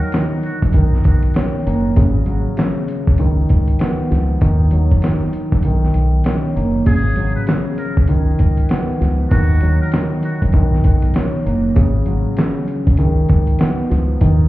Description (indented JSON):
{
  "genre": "hip hop, boom-bap hip-hop",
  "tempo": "98 BPM",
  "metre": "4/4",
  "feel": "swing 62% on 16ths",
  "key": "G# dorian",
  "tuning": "A4 = 440 Hz",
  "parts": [
    { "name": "trumpet with metal mute", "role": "melody", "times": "0.0-0.6, 6.9-10.4 s", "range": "F#4 to B4", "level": "-30 LUFS", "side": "right 1 dB", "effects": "high-pass filter, low-pass filter, tape echo" },
    { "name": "dark grand piano", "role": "accompaniment", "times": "0.0-14.5 s", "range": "C#3 to C#4", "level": "-20 LUFS", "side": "equal", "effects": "cassette tape, high-pass filter, low-pass filter" },
    { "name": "dusty soul sampler-style drum kit", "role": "drums", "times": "0.1-14.4 s", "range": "hi-hat, kick drum, snare drum", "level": "-17 LUFS", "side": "equal", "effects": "none" },
    { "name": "deep dub fingered electric bass", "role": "bass", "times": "0.6-14.5 s", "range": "F#1 to F#2", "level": "-15 LUFS", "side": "equal", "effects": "none" }
  ],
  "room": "light reverb, studio ambience",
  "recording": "heard muffled through a wall, club reverb, vinyl crackle, EQ",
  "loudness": "-14 LUFS",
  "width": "side -16 dB against mid",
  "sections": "0.0-14.5 A section",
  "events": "kick muted 5.6-6.9",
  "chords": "0.0 D#m; 0.7 Bmaj9; 2.0 G#7(no3); 3.2 C#9; 4.4 D#m; 5.6 Bmaj9; 6.9 G#7(no3); 8.1 C#9; 9.3 D#m; 10.5 Bmaj9; 11.8 G#7(no3); 13.0 C#9",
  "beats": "0.13 0.74 1.35 | 1.97 2.58 3.19 3.80 | 4.42 5.03 5.64 6.25 | 6.87 7.48 8.09 8.70 | 9.31 9.93 10.54 11.15 | 11.76 12.38 12.99 13.60 | 14.21"
}